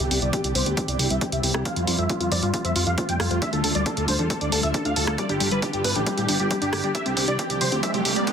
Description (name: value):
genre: uplifting trance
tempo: 136 BPM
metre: 4/4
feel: straight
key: C major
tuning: A4 = 440 Hz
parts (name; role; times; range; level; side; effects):
- supersaw chords; melody; 0.0-8.3 s; F4 to G5; -27 LUFS; equal; sidechain pumping, low-pass filter, dub echo
- shimmering ambient pad; sustained chords; 0.0-8.3 s; D3 to A4; -30 LUFS; equal; chorus, built-in reverb, phaser, vintage 12-bit sampler grit, sidechain pumping
- analog pluck; arpeggios; 0.0-8.3 s; G3 to C5; -31 LUFS; left 4 dB; chorus, sidechain pumping, ping-pong delay
- fat analog bass; bass; 0.0-8.3 s; G1 to G2; -27 LUFS; equal; sidechain pumping
- punchy analog drum machine; drums; 0.0-8.3 s; hi-hat, rim click; -27 LUFS; right 1 dB; soft clipping on snare
- electronic kick drum; drums; 0.3-8.3 s; none; -31 LUFS; equal; high-pass filter on kick
- riser; sound effects; 7.5-8.3 s; none; -28 LUFS; right 3 dB; none
room: light reverb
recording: dense, heavily limited modern master, high-pass filter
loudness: -21 LUFS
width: side -7 dB against mid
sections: 0.0-8.3 A section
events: build-up 0.0-8.3; filter sweep on supersaw synth 0.0-8.3; drum fill 6.9-8.3; riser 7.5-8.3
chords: 0.0 C; 1.7 Fadd9; 3.4 Dmadd9; 5.2 G; 6.9 C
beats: 0.33 0.77 1.21 | 1.66 2.10 2.54 2.98 | 3.42 3.86 4.30 4.74 | 5.18 5.63 6.07 6.51 | 6.95 7.39 7.83 8.27